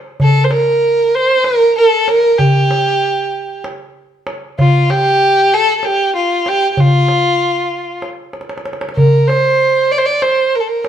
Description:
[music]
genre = Turkish makam ensemble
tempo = 192 BPM (eighths)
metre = 7/8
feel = straight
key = Bb makam rast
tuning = A4 = 440 Hz
[part]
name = dark violin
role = melody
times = 0.2-10.8 s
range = F4 to D5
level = -12 LUFS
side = right 1 dB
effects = none
[part]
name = darbuka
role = percussion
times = 0.2-10.9 s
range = none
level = -15 LUFS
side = equal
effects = none
[sound]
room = moderate stone room reverb, RT60 1.1 s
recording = band playing live in one room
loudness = -10 LUFS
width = side -9 dB against mid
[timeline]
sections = 0.2-10.9 A section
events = drum fill 8.3-9.0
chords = none

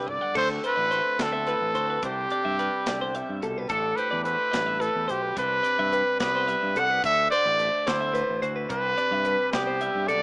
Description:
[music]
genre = math rock and midwest emo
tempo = 72 BPM (dotted quarters)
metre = 6/8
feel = straight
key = unclear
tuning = A4 = 440 Hz
[part]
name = bright trumpet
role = melody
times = 0.0-10.2 s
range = G4 to F#5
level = -24 LUFS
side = equal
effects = none
[part]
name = twangy electric guitar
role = accompaniment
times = 0.0-10.2 s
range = G2 to C5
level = -35 LUFS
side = right 1 dB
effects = none
[part]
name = twelve-string electric guitar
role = arpeggios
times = 0.0-10.2 s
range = A4 to F#5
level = -30 LUFS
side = left 1 dB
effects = none
[part]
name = growling fingered electric bass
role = bass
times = 0.0-10.2 s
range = A1 to G2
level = -34 LUFS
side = equal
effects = overdrive
[part]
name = crisp fusion drum kit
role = drums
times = 0.1-10.2 s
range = crash cymbal, hi-hat, kick drum, snare drum, toms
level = -34 LUFS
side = equal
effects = none
[sound]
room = light reverb, small room ambience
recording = rough home demo mix, small speaker sound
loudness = -22 LUFS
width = side -27 dB against mid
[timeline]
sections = 0.3-10.2 A section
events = drum fill 0.0-0.3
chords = 0.3 D7; 2.0 Cmaj9; 3.7 Am11; 5.4 Cmaj9; 7.0 D9; 8.7 Cmaj9

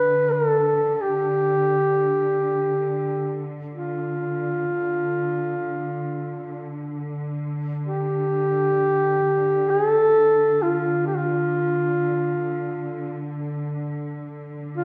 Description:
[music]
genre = caucasian folk, Caucasian lament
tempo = free time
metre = none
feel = none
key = D minor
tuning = A4 = 440 Hz
[part]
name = mellow duduk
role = melody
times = 0.0-14.8 s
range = F4 to B4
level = -23 LUFS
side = equal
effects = none
[part]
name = rich studio string section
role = drone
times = 0.0-14.8 s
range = D3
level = -31 LUFS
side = equal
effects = none
[sound]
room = wet recital hall reverb, RT60 1.4 s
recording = recorded in a church or concert hall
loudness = -23 LUFS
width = mono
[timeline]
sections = 0.0-14.8 A section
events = slowing down 11.7-14.8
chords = none

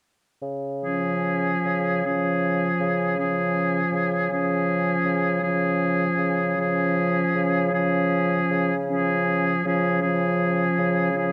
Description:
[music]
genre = classical, slow romantic movement for wind quintet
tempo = 52 BPM (dotted quarters)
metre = 12/8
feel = rubato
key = Db major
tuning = A4 = 440 Hz
[part]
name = mellow bassoon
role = bass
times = 0.4-11.3 s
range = Db3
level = -29 LUFS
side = equal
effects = none
[part]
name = clear oboe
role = second line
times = 0.8-11.3 s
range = Ab4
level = -28 LUFS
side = equal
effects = none
[part]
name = clear clarinet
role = accompaniment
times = 0.8-11.3 s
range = Db4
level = -33 LUFS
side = equal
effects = none
[part]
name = mellow French horn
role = accompaniment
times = 0.8-11.3 s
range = F3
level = -28 LUFS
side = equal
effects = none
[sound]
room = moderate scoring stage reverb, RT60 1.5 s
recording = none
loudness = -23 LUFS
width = mono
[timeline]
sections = 0.4-11.3 A section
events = none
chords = 0.4 Db

